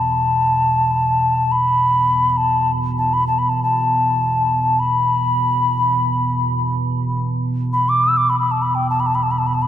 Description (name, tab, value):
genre	world meditative, free-time meditation music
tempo	free time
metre	none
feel	none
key	unclear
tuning	A4 = 440 Hz
part	hollow alto ocarina	melody	0.0-9.7 s	G5 to E6	-16 LUFS	left 1 dB	diffuse ambient delay
part	deep rumbling drone	drone	0.0-9.7 s	E2 to B2	-22 LUFS	right 2 dB	built-in reverb
room	wet cathedral reverb, RT60 6.0 s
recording	none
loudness	-15 LUFS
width	side -11 dB against mid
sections	0.0-9.7 A section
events	none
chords	none